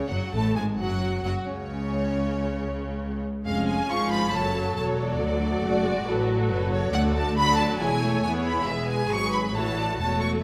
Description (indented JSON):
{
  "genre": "quick classical-period movement for string orchestra",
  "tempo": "137 BPM",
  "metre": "4/4",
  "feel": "rubato",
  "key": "F# minor, A major from 6.9 s",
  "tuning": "A4 = 441 Hz",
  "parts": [
    { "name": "rich studio violin section", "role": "melody", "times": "0.0-10.3 s", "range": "C#5 to C#6", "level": "-31 LUFS", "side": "equal", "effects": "none" },
    { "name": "rich chamber violin section", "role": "second line", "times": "0.0-10.4 s", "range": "C#4 to E#5", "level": "-34 LUFS", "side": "equal", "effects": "none" },
    { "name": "rich chamber viola section", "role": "accompaniment", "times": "0.0-10.4 s", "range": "C#3 to A4", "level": "-31 LUFS", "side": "equal", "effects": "none" },
    { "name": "warm chamber cello section", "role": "bass", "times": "0.1-10.4 s", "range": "C#2 to E3", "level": "-33 LUFS", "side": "equal", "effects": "none" },
    { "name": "warm chamber double bass section", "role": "bass", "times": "0.1-10.4 s", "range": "E1 to E2", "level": "-33 LUFS", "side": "equal", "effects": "none" }
  ],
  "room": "wet recital hall reverb, RT60 1.5 s",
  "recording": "none",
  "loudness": "-25 LUFS",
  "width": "mono",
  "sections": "0.0-10.4 A section",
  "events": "none",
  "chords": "0.0 F#m; 0.8 F#5; 1.7 N.C.; 3.5 C#/E#; 4.3 F#m; 5.2 D; 7.8 E; 9.5 A",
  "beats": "0.34 0.79 1.24 | 1.68 2.13 2.57 3.02 | 3.45 3.89 4.33 4.76 | 5.20 5.64 6.07 6.50 | 6.94 7.37 7.80 8.24 | 8.68 9.11 9.55 9.99 | 10.43"
}